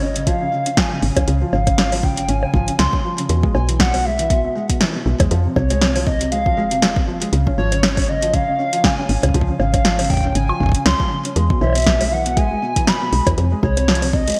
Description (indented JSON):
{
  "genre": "IDM",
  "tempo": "119 BPM",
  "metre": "4/4",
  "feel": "swing 56% on 16ths",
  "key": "unclear",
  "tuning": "A4 = 439 Hz",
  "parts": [
    { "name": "warbly nostalgic lead", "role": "melody", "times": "0.0-14.4 s", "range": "Db5 to C6", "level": "-24 LUFS", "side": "equal", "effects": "subtle chorus, digital delay" },
    { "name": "felt-muted upright piano", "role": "arpeggios", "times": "0.0-14.3 s", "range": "B2 to Db4", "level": "-26 LUFS", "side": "equal", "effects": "digital delay" },
    { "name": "woody FM bass", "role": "bass", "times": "0.0-14.3 s", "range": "F1 to F2", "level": "-22 LUFS", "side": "equal", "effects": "none" },
    { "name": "electro analog drum machine", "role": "drums", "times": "0.2-14.4 s", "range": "bongos, hi-hat, snare drum", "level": "-23 LUFS", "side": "equal", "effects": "gated reverb, digital delay" },
    { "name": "electronic kick drum", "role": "drums", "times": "0.3-14.2 s", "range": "none", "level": "-22 LUFS", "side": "equal", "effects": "none" }
  ],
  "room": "moderate lush hall reverb, RT60 1.9 s, digital ambience",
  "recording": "bright 1980s-style digital production",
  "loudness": "-18 LUFS",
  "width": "mono",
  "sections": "0.0-14.4 A section",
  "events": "none",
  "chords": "0.0 Db; 3.3 E; 5.3 Fm; 7.3 Db; 11.4 E; 13.4 Fm",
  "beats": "0.27 0.77 | 1.28 1.78 2.29 2.79 | 3.29 3.80 4.30 4.81 | 5.31 5.82 6.32 6.82 | 7.33 7.83 8.34 8.84 | 9.34 9.85 10.35 10.86 | 11.36 11.87 12.37 12.87 | 13.38 13.88 14.39"
}